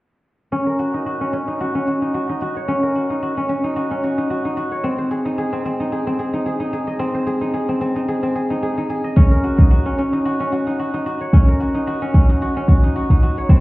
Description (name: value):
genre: organic downtempo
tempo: 111 BPM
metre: 4/4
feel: swing 55% on 16ths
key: Eb dorian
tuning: A4 = 440 Hz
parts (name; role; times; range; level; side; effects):
- guzheng; arpeggios; 0.5-13.6 s; C4 to Eb5; -19 LUFS; equal; low-pass filter, digital delay
- cabasa; drums; 0.5-13.6 s; none; -62 LUFS; right 1 dB; none
- electronic kick drum; drums; 9.2-13.6 s; none; -11 LUFS; equal; none
room: light reverb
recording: heard muffled through a wall, stone room reverb, EQ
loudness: -17 LUFS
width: side -19 dB against mid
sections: 0.5-13.6 A section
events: none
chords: 0.5 Ebm7; 4.8 Ab; 9.2 Ebm7